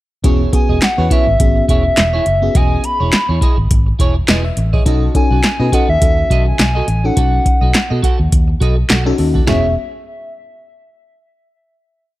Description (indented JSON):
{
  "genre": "early-eighties boogie funk",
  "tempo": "104 BPM",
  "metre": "4/4",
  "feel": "swing 56% on 16ths",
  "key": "E major",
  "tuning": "A4 = 440 Hz",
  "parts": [
    { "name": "FM electric piano with soft pad layer", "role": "accompaniment", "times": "0.2-9.7 s", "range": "D#3 to E5", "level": "-20 LUFS", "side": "left 2 dB", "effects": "chorus" },
    { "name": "clean electric guitar", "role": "riff", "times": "0.2-9.7 s", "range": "E4 to F#5", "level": "-24 LUFS", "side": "right 5 dB", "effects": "analog chorus" },
    { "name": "vintage muted fingered electric bass", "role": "bass", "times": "0.2-9.7 s", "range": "E1 to B2", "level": "-16 LUFS", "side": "equal", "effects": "none" },
    { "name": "electro analog drum machine", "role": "drums", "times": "0.2-9.6 s", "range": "handclaps, hi-hat, kick drum, snare drum, toms", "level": "-14 LUFS", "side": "equal", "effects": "overdrive" },
    { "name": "hollow clarinet-like synth lead", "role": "melody", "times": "0.5-9.7 s", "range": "E5 to B5", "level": "-18 LUFS", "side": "equal", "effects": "chorus, tape echo" }
  ],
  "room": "digital ambience",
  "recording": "dark, warm production",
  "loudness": "-11 LUFS",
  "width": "side -16 dB against mid",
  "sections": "0.2-9.5 verse; 9.5-11.8 final chord",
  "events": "none",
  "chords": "0.2 E6; 4.9 B7; 9.5 E6",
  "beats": "| 0.24 0.82 1.40 1.98 | 2.55 3.13 3.71 4.28 | 4.86 5.44 6.01 6.59 | 7.17 7.74 8.32 8.90 | 9.47"
}